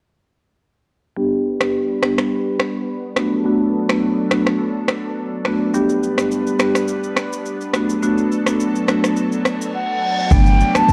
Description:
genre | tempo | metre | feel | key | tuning
afrobeats | 105 BPM | 4/4 | swing 55% on 16ths | G major | A4 = 441 Hz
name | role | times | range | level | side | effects
marimba with medium mallets | accompaniment | 1.2-10.9 s | F#3 to G4 | -21 LUFS | equal | low-pass filter
lush unison pad | sustained chords | 1.2-10.9 s | F#3 to D5 | -28 LUFS | equal | chorus, sidechain pumping, low-pass filter
afro-pop drum kit | drums | 1.6-10.9 s | finger snaps, kick drum, rim click, shaker | -23 LUFS | equal | overdrive
reverse cymbal and downlifter | sound effects | 9.6-10.9 s | none | -31 LUFS | equal | none
silver concert flute | melody | 9.7-10.9 s | F#5 to A5 | -20 LUFS | equal | none
clean 808-style bass | bass | 10.3-10.6 s | G1 | -16 LUFS | equal | none
congas | percussion | 10.3-10.9 s | none | -30 LUFS | equal | none
room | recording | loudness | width
light reverb | worn, warbling old tape, cassette tape, warbly pitch drift | -19 LUFS | mono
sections
1.2-10.3 A section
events
filter sweep 1.2-10.3; reverse cymbal 9.6-10.3; silent gap 9.7-10.3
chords
1.2 G; 3.2 Bm7; 5.7 G; 7.7 Bm7; 10.3 Gmaj7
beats
| 1.17 1.74 2.31 2.88 | 3.46 4.03 4.60 5.17 | 5.74 6.31 6.88 7.46 | 8.03 8.60 9.17 9.74 | 10.31 10.88

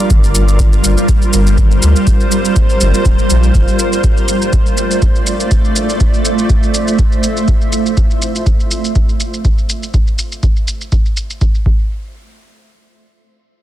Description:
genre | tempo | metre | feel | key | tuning
dub techno | 122 BPM | 4/4 | swing 55% on 16ths | unclear | A4 = 440 Hz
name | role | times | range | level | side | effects
granular cloud pad | sustained chords | 0.0-8.0 s | G3 to E5 | -16 LUFS | right 1 dB | built-in reverb, sidechain pumping
soft dub sub bass | bass | 0.1-3.7 s | D1 to D2 | -12 LUFS | equal | sidechain pumping
electronic kick drum | drums | 0.1-11.8 s | none | -13 LUFS | equal | none
shaker | drums | 0.1-11.6 s | none | -20 LUFS | equal | low-pass filter on perc
room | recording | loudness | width
little or no reverb | dense, heavily limited modern master | -10 LUFS | side -13 dB against mid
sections
0.0-11.9 A section; 11.9-13.6 B section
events
none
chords
0.0 Gm7; 4.0 Dm7; 11.7 N.C.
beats
| 0.10 0.59 1.09 1.58 | 2.07 2.56 3.05 3.54 | 4.04 4.53 5.02 5.51 | 6.00 6.50 6.99 7.48 | 7.97 8.46 8.96 9.45 | 9.94 10.43 10.92 11.41

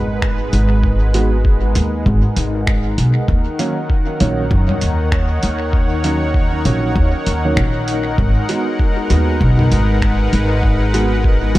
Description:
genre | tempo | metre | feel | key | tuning
ambient dub | 98 BPM | 4/4 | swing 59% on 16ths | G# minor | A4 = 440 Hz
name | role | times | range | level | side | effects
warm analog pad | sustained chords | 0.0-11.6 s | D#3 to F#5 | -21 LUFS | left 1 dB | chorus, tremolo
upright bass | bass | 0.0-11.6 s | G#1 to F#2 | -16 LUFS | equal | none
electronic kick drum | drums | 0.2-11.4 s | none | -17 LUFS | equal | none
lo-fi sampler-style drum kit | drums | 0.2-11.6 s | finger snaps, hi-hat, toms | -26 LUFS | equal | dub echo
dark upright piano | stabs | 1.1-11.6 s | D#3 to F#4 | -23 LUFS | right 3 dB | dub echo
room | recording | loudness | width
digital ambience | none | -13 LUFS | side -16 dB against mid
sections
0.0-11.6 A section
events
none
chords
0.0 G#m7; 3.3 D#m7; 8.2 G#m7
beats
0.23 | 0.84 1.45 2.06 2.67 | 3.29 3.90 4.51 5.12 | 5.74 6.35 6.96 7.57 | 8.18 8.80 9.41 10.02 | 10.63 11.25

